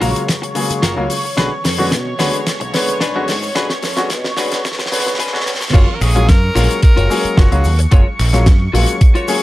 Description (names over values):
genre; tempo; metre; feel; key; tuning
nu-disco, nu disco; 110 BPM; 4/4; straight; F# major; A4 = 442 Hz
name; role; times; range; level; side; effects
warm concert grand piano; accompaniment; 0.0-9.4 s; C#3 to E#5; -21 LUFS; left 1 dB; sidechain pumping, low-pass filter, slapback echo
lush unison pad; sustained chords; 0.0-9.4 s; C#5 to C#6; -25 LUFS; right 1 dB; chorus, sidechain pumping
clean electric guitar; riff; 0.0-9.4 s; D4 to C#5; -23 LUFS; left 2 dB; wide subtle chorus, low-pass filter
picked electric bass with an envelope filter; bass; 0.0-8.8 s; F#1 to B2; -17 LUFS; equal; none
damped 70s drum kit; drums; 0.0-9.4 s; cabasa, crash cymbal, finger snaps, hi-hat, snare drum; -20 LUFS; left 1 dB; none
electronic kick drum; drums; 0.3-9.1 s; none; -11 LUFS; equal; high-pass filter on kick, high-pass filter on room
edgy tenor saxophone; melody; 5.7-7.8 s; E#4 to A#4; -22 LUFS; equal; tape echo
room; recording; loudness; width
light reverb, small room ambience; high-pass filter; -12 LUFS; side -16 dB against mid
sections
0.0-5.7 A section; 5.7-9.4 B section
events
build-up 0.0-5.7; drum fill 0.0-5.7; filter sweep 0.0-5.7; drop 5.7-9.4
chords
0.0 F#maj7; 1.4 Bm6; 5.7 F#maj7